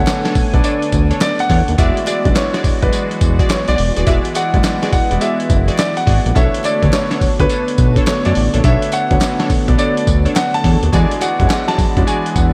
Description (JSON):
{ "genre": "R&B, new jack swing", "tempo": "105 BPM", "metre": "4/4", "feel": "swing 64% on 16ths", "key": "B dorian", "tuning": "A4 = 440 Hz", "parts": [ { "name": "warm grand piano", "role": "melody", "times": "0.0-12.4 s", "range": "B4 to A5", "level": "-22 LUFS", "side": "equal", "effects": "slapback echo" }, { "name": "warm concert grand piano", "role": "accompaniment", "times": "0.0-12.5 s", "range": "F#3 to E5", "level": "-25 LUFS", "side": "equal", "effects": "slapback echo" }, { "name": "sweeping resonant pad", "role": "sustained chords", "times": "0.0-12.5 s", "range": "D3 to G#5", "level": "-26 LUFS", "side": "equal", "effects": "chorus" }, { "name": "fat analog bass", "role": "bass", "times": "0.0-12.5 s", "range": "D#1 to F#2", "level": "-18 LUFS", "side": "equal", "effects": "none" }, { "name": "boom bap sampler-style drum kit", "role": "drums", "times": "0.1-12.5 s", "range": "handclaps, hi-hat, kick drum, snare drum, tambourine", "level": "-19 LUFS", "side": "equal", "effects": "none" }, { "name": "group handclap", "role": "percussion", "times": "0.1-11.7 s", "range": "none", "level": "-40 LUFS", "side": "equal", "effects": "none" }, { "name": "funky polysynth comp", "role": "stabs", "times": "0.2-12.3 s", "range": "D4 to D5", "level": "-27 LUFS", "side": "equal", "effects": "chorus, slapback echo, digital delay" } ], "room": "moderate lush hall reverb, RT60 2.2 s", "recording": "big arena sound", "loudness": "-15 LUFS", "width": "mono", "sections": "0.0-12.5 A section", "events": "none", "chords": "0.0 Bm9; 1.8 E9; 6.4 Bm9; 10.9 E9" }